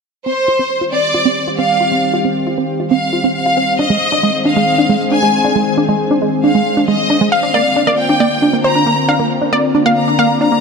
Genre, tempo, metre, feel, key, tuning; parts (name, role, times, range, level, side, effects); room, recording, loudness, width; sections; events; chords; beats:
trance; 136 BPM; 4/4; straight; C minor; A4 = 444 Hz
rich studio violin section; second line; 0.3-10.6 s; C5 to Bb5; -16 LUFS; left 1 dB; ping-pong delay
lush unison pad; sustained chords; 0.9-10.6 s; D3 to D5; -18 LUFS; left 2 dB; chorus
tight sequenced synth; arpeggios; 0.3-10.6 s; Ab3 to F4; -16 LUFS; right 2 dB; chorus, phaser, ping-pong delay
wide unison pluck; melody; 7.3-10.6 s; C5 to F5; -16 LUFS; left 1 dB; digital delay
moderate huge ambient reverb, RT60 4.3 s; -12 LUFS; side -5 dB against mid
0.3-10.6 A section
filter sweep on synth arpeggio sound 0.3-10.6; filter sweep on analog synth pad 0.3-10.6
0.3 Cm; 3.8 Ab; 7.3 Bbadd9
| 0.26 0.70 1.14 1.58 | 2.03 2.47 2.91 3.35 | 3.79 4.23 4.67 5.12 | 5.56 6.00 6.44 6.88 | 7.32 7.76 8.20 8.64 | 9.09 9.53 9.97 10.41